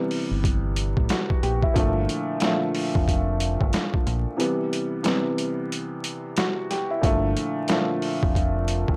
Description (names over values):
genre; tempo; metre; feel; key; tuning
hip hop, boom-bap hip-hop; 91 BPM; 4/4; swing 61% on 16ths; G dorian; A4 = 439 Hz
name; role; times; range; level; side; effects
warm upright piano; accompaniment; 0.0-9.0 s; Bb2 to G4; -28 LUFS; equal; high-pass filter, low-pass filter
boom bap sampler-style drum kit; drums; 0.1-9.0 s; hi-hat, kick drum, snare drum; -27 LUFS; equal; overdrive
deep dub fingered electric bass; bass; 0.3-9.0 s; F1 to Bb1; -28 LUFS; equal; none
room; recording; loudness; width
little or no reverb; dry, gritty hardware recording, vinyl crackle; -24 LUFS; mono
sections
0.0-9.0 A section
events
break 4.4-7.0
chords
0.0 Am9 (rootless); 1.8 Gm9; 4.4 Cmaj7#11; 7.0 Gm9